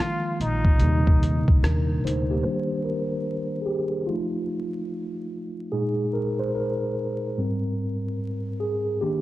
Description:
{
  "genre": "lo-fi hip hop",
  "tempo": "73 BPM",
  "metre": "4/4",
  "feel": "swing 64% on 16ths",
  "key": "Eb major",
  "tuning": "A4 = 440 Hz",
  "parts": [
    { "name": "trumpet with plunger mute", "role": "melody", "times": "0.0-1.6 s", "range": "Eb4 to F4", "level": "-31 LUFS", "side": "left 1 dB", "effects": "analog delay" },
    { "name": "mellow tine electric piano", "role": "accompaniment", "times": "0.0-9.2 s", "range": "Ab2 to C5", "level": "-25 LUFS", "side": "equal", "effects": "medium stereo tremolo, low-pass filter" },
    { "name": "dusty soul sampler-style drum kit", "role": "drums", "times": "0.0-2.3 s", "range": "hi-hat, kick drum, rim click", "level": "-19 LUFS", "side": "equal", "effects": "none" },
    { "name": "upright bass", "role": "bass", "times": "0.4-2.4 s", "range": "Bb1 to Eb2", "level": "-24 LUFS", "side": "equal", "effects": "none" }
  ],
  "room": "light reverb",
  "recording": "dark, warm production, vinyl crackle",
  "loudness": "-23 LUFS",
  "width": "side -16 dB against mid",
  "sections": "0.0-2.4 A section; 2.4-9.2 B section",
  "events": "tine electric piano solo 2.4-9.2; filter sweep on tine electric piano 2.4-9.2",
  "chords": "0.0 Bb7sus4; 0.8 Eb6; 2.4 Ebmaj7; 4.1 F7; 5.7 Bb7sus4; 7.4 Abmaj7",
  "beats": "0.81 1.63 | 2.45 3.27 4.09 4.92 | 5.74 6.56 7.38 8.20 | 9.02"
}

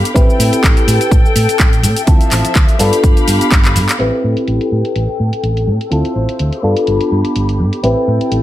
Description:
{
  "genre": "filtered disco house",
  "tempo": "125 BPM",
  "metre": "4/4",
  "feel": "swing 55% on 16ths",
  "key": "A minor",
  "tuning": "A4 = 441 Hz",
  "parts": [
    { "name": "mellow reed electric piano", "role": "accompaniment", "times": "0.0-8.4 s", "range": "B3 to B4", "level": "-17 LUFS", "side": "left 1 dB", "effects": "phaser, sidechain pumping, low-pass filter" },
    { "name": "clear studio string section", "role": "sustained chords", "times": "0.0-8.4 s", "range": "F3 to E6", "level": "-20 LUFS", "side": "left 3 dB", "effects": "sidechain pumping, low-pass filter" },
    { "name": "house drum kit", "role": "drums", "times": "0.1-8.4 s", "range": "cabasa, handclaps, hi-hat", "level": "-19 LUFS", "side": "equal", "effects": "sidechain pumping on hats, low-pass filter on hats, studio reverb, sidechain pumping on perc, low-pass filter on perc, low-pass filter on snare" },
    { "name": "hollow-body short-scale fingered electric bass", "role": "bass", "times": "0.2-8.4 s", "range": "G1 to A2", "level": "-16 LUFS", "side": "equal", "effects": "sidechain pumping, low-pass filter" },
    { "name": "electronic kick drum", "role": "drums", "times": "0.2-3.6 s", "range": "none", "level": "-11 LUFS", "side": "equal", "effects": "studio reverb" }
  ],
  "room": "light reverb, digital ambience",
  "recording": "none",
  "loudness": "-11 LUFS",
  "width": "side -14 dB against mid",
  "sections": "0.0-4.0 A section; 4.0-8.4 B section",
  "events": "drum fill 3.6-4.0; filter sweep 4.0-8.4",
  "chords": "0.2 Am7; 2.1 Dm9; 2.8 G7; 4.0 Am7; 5.9 Dm9; 6.6 G7; 7.8 Am7",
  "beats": "| 0.16 0.64 1.12 1.60 | 2.08 2.56 3.04 3.52 | 4.00 4.48 4.96 5.44 | 5.92 6.40 6.88 7.36 | 7.84 8.32"
}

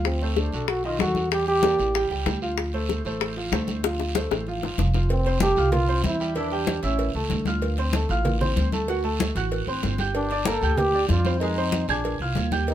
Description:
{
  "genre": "latin, salsa",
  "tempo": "190 BPM",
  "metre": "4/4",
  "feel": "straight",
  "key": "D minor",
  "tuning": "A4 = 440 Hz",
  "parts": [
    { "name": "bright grand piano", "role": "accompaniment", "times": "0.0-12.7 s", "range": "D#3 to Ab6", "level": "-29 LUFS", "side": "right 1 dB", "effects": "none" },
    { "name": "upright bass", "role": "bass", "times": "0.0-12.7 s", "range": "F1 to F2", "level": "-26 LUFS", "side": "equal", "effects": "none" },
    { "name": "congas", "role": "percussion", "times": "0.0-12.7 s", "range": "none", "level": "-29 LUFS", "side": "left 2 dB", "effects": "none" },
    { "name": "guiro", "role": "percussion", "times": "0.0-12.7 s", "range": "none", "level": "-37 LUFS", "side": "right 4 dB", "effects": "none" },
    { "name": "warm trombone", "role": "melody", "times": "0.1-2.1, 5.1-7.1, 10.2-12.7 s", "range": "C4 to A4", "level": "-25 LUFS", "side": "right 1 dB", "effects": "none" },
    { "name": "bongos and cowbell", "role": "percussion", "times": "0.1-12.7 s", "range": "none", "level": "-30 LUFS", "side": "left 4 dB", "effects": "none" }
  ],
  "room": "light reverb",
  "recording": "minimal, uncompressed stereo recording",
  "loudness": "-22 LUFS",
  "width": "side -11 dB against mid",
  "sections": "0.0-5.1 A section; 5.1-12.7 B section",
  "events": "drum fill 3.8-5.1",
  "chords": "0.1 Dm7; 0.7 B7; 1.3 Em7b5; 1.9 A7; 2.6 Dm7; 5.1 Fmaj7; 6.4 A7sus4; 7.0 A; 7.6 Dm7; 8.9 D7; 10.1 Gm7; 11.4 Fm7; 12.0 Bb5",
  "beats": "| 0.06 0.37 0.69 1.00 | 1.32 1.63 1.95 2.26 | 2.58 2.89 3.21 3.52 | 3.84 4.15 4.47 4.78 | 5.10 5.41 5.73 6.04 | 6.36 6.67 6.99 7.30 | 7.62 7.94 8.25 8.57 | 8.88 9.20 9.52 9.83 | 10.15 10.46 10.78 11.10 | 11.41 11.73 12.04 12.36 | 12.67"
}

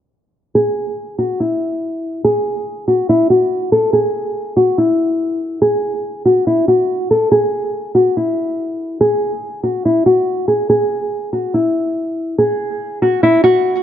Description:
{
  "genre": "hip hop",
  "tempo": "142 BPM",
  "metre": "4/4",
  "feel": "half-time",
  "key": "unclear",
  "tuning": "A4 = 440 Hz",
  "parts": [
    { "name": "nylon-string guitar", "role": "melody", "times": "0.6-13.8 s", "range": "E4 to A4", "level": "-14 LUFS", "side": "equal", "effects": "digital delay" }
  ],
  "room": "light reverb",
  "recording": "dark, warm production, low-pass filter",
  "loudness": "-14 LUFS",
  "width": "side -10 dB against mid",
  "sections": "0.6-13.8 A section",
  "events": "filter sweep 0.6-13.8",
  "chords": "none",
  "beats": "| 0.55 0.98 1.40 1.82 | 2.24 2.67 3.09 3.51 | 3.93 4.36 4.78 5.20 | 5.62 6.05 6.47 6.89 | 7.31 7.74 8.16 8.58 | 9.00 9.43 9.85 10.27 | 10.69 11.12 11.54 11.96 | 12.38 12.81 13.23 13.65"
}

